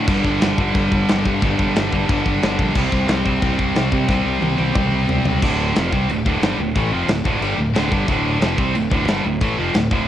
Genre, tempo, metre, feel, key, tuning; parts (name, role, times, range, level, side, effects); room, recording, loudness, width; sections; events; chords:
heavy metal; 180 BPM; 4/4; straight; D minor; A4 = 439 Hz
scooped high-gain guitar; riff; 0.0-10.1 s; D2 to C4; -21 LUFS; right 5 dB; distortion, cassette tape
thick fuzz guitar; riff; 0.0-10.1 s; D2 to C4; -26 LUFS; left 2 dB; distortion, cassette tape
tight distorted guitar; riff; 0.0-10.1 s; D2 to C4; -26 LUFS; left 13 dB; distortion, cassette tape
growling fingered electric bass; bass; 0.1-10.1 s; D1 to C3; -24 LUFS; equal; overdrive
modern studio drum kit; drums; 0.1-10.0 s; china cymbal, crash cymbal, kick drum, snare drum, toms; -21 LUFS; left 1 dB; cassette tape
little or no reverb; home recording on cassette; -16 LUFS; side -11 dB against mid
0.0-5.4 A section; 5.4-10.1 B section
drum fill 4.1-5.4
0.1 G5; 2.8 C5; 5.4 Dm